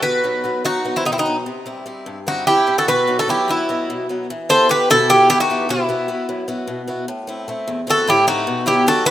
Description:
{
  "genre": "greek folk, Greek bouzouki band",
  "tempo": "299 BPM (eighths)",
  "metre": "7/8",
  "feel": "straight",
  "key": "unclear",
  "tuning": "A4 = 440 Hz",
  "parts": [
    { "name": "Greek bouzouki", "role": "melody", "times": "0.0-9.1 s", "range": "D#4 to C5", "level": "-16 LUFS", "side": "equal", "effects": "none" },
    { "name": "Greek bouzouki", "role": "second line", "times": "0.0-9.1 s", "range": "B3 to A4", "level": "-23 LUFS", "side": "right 1 dB", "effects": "none" },
    { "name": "picked swing-style acoustic guitar", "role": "accompaniment", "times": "0.0-9.1 s", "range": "E2 to D#5", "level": "-24 LUFS", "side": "left 1 dB", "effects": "none" }
  ],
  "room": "moderate lush hall reverb, RT60 2.5 s",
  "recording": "rough home demo mix",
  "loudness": "-15 LUFS",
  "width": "side -12 dB against mid",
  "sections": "0.0-4.3 A section; 4.3-9.1 B section",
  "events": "speeding up 0.0-9.1",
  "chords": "0.0 B; 1.5 C; 2.9 B; 4.3 Em; 5.7 Bsus4; 7.1 Am; 8.5 B"
}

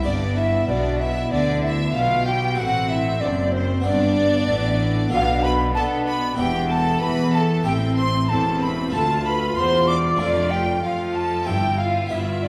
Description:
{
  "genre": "classical, baroque-style concerto movement with solo episodes",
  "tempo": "95 BPM",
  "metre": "4/4",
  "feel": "straight",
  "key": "unclear",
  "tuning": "A4 = 440 Hz",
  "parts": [
    { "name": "clear chamber violin section", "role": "melody", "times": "0.0-12.5 s", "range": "C5 to D6", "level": "-32 LUFS", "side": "equal", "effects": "none" },
    { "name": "hollow concert flute", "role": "melody", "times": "0.0-12.5 s", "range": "C5 to D6", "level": "-27 LUFS", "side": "equal", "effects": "none" },
    { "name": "clear chamber violin section", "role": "second line", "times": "0.0-12.5 s", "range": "C4 to D5", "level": "-30 LUFS", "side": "equal", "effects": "none" },
    { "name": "harpsichord", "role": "accompaniment", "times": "0.0-12.5 s", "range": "D2 to A4", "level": "-32 LUFS", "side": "equal", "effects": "none" },
    { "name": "rich chamber viola section", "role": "accompaniment", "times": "0.0-12.5 s", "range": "B3 to F4", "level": "-30 LUFS", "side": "equal", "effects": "none" },
    { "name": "clear chamber cello section", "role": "bass", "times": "0.0-12.5 s", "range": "D2 to B3", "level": "-28 LUFS", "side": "equal", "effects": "none" },
    { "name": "clear chamber double bass section", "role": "bass", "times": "0.0-12.5 s", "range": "E1 to B2", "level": "-28 LUFS", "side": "equal", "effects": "none" }
  ],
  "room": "wet recital hall reverb, RT60 1.6 s",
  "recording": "heard from further back in the room",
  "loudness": "-21 LUFS",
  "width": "mono",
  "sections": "0.0-12.5 A section",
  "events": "none",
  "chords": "0.1 G; 2.6 F#dim/A; 3.9 G; 5.1 Bm7b5; 6.4 Em; 7.7 Am; 8.9 Dm; 10.2 F69; 11.5 C/G"
}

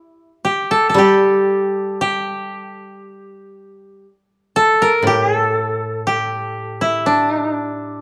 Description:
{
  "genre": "japanese traditional, Japanese chamber music",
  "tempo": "59 BPM",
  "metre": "4/4",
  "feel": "rubato",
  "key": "unclear",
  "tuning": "A4 = 440 Hz",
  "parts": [
    { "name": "koto", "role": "melody", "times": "0.0-8.0 s", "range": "D4 to Bb4", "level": "-19 LUFS", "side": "equal", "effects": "none" },
    { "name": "koto", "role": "accompaniment", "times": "0.9-8.0 s", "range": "A2 to G3", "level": "-21 LUFS", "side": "equal", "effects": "none" }
  ],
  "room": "light reverb",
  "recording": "dark, warm production",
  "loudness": "-17 LUFS",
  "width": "mono",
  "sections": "0.0-8.0 A section",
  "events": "none",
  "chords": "none"
}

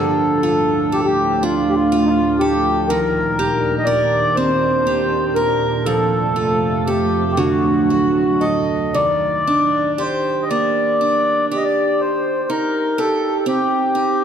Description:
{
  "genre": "celtic folk, Celtic slow air",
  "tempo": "40 BPM (dotted quarters)",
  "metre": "6/8",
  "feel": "rubato",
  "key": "unclear",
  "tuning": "A4 = 441 Hz",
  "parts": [
    { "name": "mellow accordion", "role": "melody", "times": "0.0-14.2 s", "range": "Eb4 to Eb5", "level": "-18 LUFS", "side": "left 2 dB", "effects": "none" },
    { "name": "picked acoustic archtop guitar", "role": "accompaniment", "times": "0.0-14.2 s", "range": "D3 to Bb4", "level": "-20 LUFS", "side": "right 3 dB", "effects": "none" },
    { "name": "soft additive organ-like pad", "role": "sustained chords", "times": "0.0-8.9 s", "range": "D2 to D4", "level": "-23 LUFS", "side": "right 1 dB", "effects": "ensemble chorus, built-in reverb" }
  ],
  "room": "wet church reverb, RT60 2.9 s",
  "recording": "dark, warm production",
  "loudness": "-15 LUFS",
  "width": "side -8 dB against mid",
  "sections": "0.0-14.2 A section",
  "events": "none",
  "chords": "0.0 Dm; 2.9 Cm7/Eb; 5.8 F; 7.4 D; 8.9 Ebmaj7; 12.0 Cm6"
}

